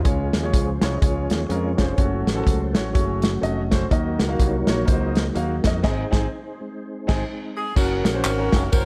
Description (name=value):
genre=uptempo gospel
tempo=124 BPM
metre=4/4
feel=swing 60% on 8ths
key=unclear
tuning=A4 = 444 Hz
part: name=clear grand piano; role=accompaniment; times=0.0-8.9 s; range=Ab2 to F5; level=-30 LUFS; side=equal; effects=none
part: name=mellow tonewheel organ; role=sustained chords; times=0.0-8.9 s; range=F3 to Gb5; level=-31 LUFS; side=equal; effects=slow rotary speaker, chorus vibrato
part: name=fingered electric bass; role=bass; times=0.1-8.9 s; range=F1 to F2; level=-28 LUFS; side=equal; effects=none
part: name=natural country drum kit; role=drums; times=0.1-8.9 s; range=crash cymbal, hi-hat, kick drum, ride cymbal, snare drum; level=-24 LUFS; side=equal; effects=none
part: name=bright saxophone section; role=melody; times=7.6-8.9 s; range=Bb3 to Bb4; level=-28 LUFS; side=equal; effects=none
part: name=tambourine and handclaps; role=percussion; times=7.8-8.9 s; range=none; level=-33 LUFS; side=equal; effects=none
room=light reverb, small room ambience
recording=none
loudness=-22 LUFS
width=mono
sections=0.0-7.8 A section; 7.8-8.9 B section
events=band accent 5.8-7.8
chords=0.0 Db; 2.0 Gbm; 3.9 Ebm; 5.8 Ab; 7.8 Gb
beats=| 0.05 0.53 1.01 1.50 | 1.98 2.46 2.95 3.43 | 3.91 4.40 4.88 5.36 | 5.84 6.32 6.80 7.29 | 7.77 8.25 8.73